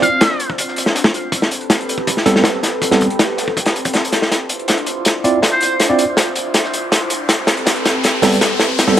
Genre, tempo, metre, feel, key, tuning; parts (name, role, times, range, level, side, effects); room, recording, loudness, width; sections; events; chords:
drum and bass, jungle; 161 BPM; 4/4; straight; D minor; A4 = 441 Hz
trumpet with metal mute; melody; 0.0-0.5, 5.5-5.7 s; C5 to F5; -21 LUFS; equal; dub echo
airy breathy pad; sustained chords; 0.0-9.0 s; C4 to C5; -22 LUFS; equal; chorus, phaser
tine electric piano; stabs; 0.0-9.0 s; G3 to D5; -18 LUFS; right 3 dB; medium stereo tremolo, low-pass filter, dub echo
crunchy breakbeat drum kit; drums; 0.0-9.0 s; hi-hat, kick drum, snare drum; -16 LUFS; equal; high-pass filter on kick, high-pass filter on hats, high-pass filter on snare, high-pass filter on room
crunchy breakbeat drum kit; drums; 0.0-9.0 s; hi-hat, snare drum; -24 LUFS; left 1 dB
riser; sound effects; 5.7-9.0 s; -25 LUFS; left 1 dB
moderate plate reverb, RT60 1.5 s, studio reverb; vinyl crackle; -13 LUFS; side -11 dB against mid
0.0-9.0 A section
build-up 0.0-9.0; filter sweep on analog synth pad 0.0-9.0; drum fill 4.3-9.0; riser 5.7-9.0
0.0 Dm7; 1.3 Am9; 4.3 Dm9; 7.3 Am9